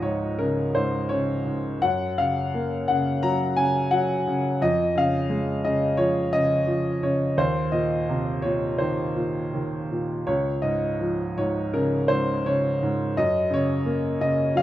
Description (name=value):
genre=classical, lyrical solo piano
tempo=85 BPM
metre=4/4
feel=rubato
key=Db major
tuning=A4 = 440 Hz
part: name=clear upright piano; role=solo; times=0.0-14.6 s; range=Db2 to Bb5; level=-22 LUFS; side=equal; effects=none
room=moderate recital hall reverb, RT60 1.5 s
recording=dark, warm production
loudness=-22 LUFS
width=side -13 dB against mid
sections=0.0-14.6 A section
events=none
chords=0.0 Dbadd9; 1.8 Gb; 4.6 Dbadd9/F; 7.4 Cm7/Eb; 10.3 Dbadd9; 13.2 Gb